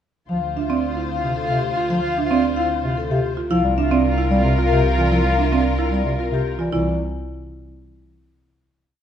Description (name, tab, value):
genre	classical, minimalist pattern music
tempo	112 BPM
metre	3/4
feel	straight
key	C mixolydian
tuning	A4 = 440 Hz
part	vibraphone with hard mallets	melody	0.3-7.0 s	G4 to F5	-26 LUFS	left 8 dB	none
part	mellow soprano saxophone	second line	0.3-6.5 s	F4	-27 LUFS	equal	none
part	mellow bass clarinet	accompaniment	0.3-7.0 s	C3 to G3	-24 LUFS	equal	none
part	rich studio violin section	sustained chords	0.3-6.5 s	F4 to C5	-28 LUFS	left 7 dB	none
part	clear chamber double bass section	bass	0.3-7.0 s	C2 to D2	-24 LUFS	right 1 dB	none
part	buzzing marimba with medium mallets	arpeggios	0.6-7.0 s	C4 to F4	-23 LUFS	right 5 dB	none
room	moderate recital hall reverb, RT60 1.4 s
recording	dark, warm production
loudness	-18 LUFS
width	side -9 dB against mid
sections	0.3-6.7 A section; 6.7-8.3 final chord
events	none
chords	0.3 Dm7; 3.5 C9sus4; 6.7 C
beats	| 0.29 0.83 1.37 | 1.90 2.44 2.97 | 3.51 4.04 4.58 | 5.12 5.65 6.19 | 6.72